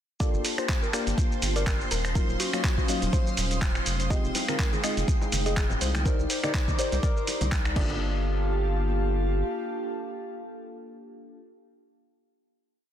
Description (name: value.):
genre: deep house.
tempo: 123 BPM.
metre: 4/4.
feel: swing 56% on 16ths.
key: unclear.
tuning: A4 = 440 Hz.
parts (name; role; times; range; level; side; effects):
soft round pluck; melody; 0.2-11.4 s; Bb4 to Eb5; -40 LUFS; left 1 dB; analog chorus, ping-pong delay.
airy breathy pad; sustained chords; 0.5-11.4 s; Ab3 to Eb6; -37 LUFS; right 1 dB; chorus, sidechain pumping.
mellow FM electric piano; stabs; 0.2-11.4 s; Gb3 to D5; -34 LUFS; left 2 dB; chorus, phaser, cassette tape, sidechain pumping, ping-pong delay.
dusty soul sampler-style drum kit; drums; 0.2-7.9 s; crash cymbal, finger snaps, handclaps, hi-hat, shaker; -31 LUFS; right 1 dB; soft clipping on snare.
electronic kick drum; drums; 0.2-7.9 s; none; -26 LUFS; equal; none.
string machine, violins; texture; 0.2-8.0 s; C5 to C6; -39 LUFS; equal; ensemble chorus.
warbly tape-like pad; texture; 0.6-11.5 s; Gb3 to D6; -37 LUFS; equal; chorus, built-in reverb, sidechain pumping.
round analog bass; bass; 0.3-9.4 s; Eb1 to C2; -28 LUFS; equal; tube saturation, sidechain pumping.
soft struck synth lead; melody; 0.6-7.2 s; Gb4 to C5; -37 LUFS; left 3 dB; chorus, cassette tape, ping-pong delay.
bongos and congas; percussion; 4.4-8.0 s; none; -38 LUFS; left 2 dB; none.
room: light reverb, digital ambience.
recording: dense, heavily limited modern master.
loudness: -24 LUFS.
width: side -10 dB against mid.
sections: 0.2-8.0 drop; 8.0-11.9 final hit.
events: drop 0.2-8.0.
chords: 0.2 Gm9; 1.9 Ebm9; 3.9 Fm9; 6.1 Cm9; 7.8 Gm9.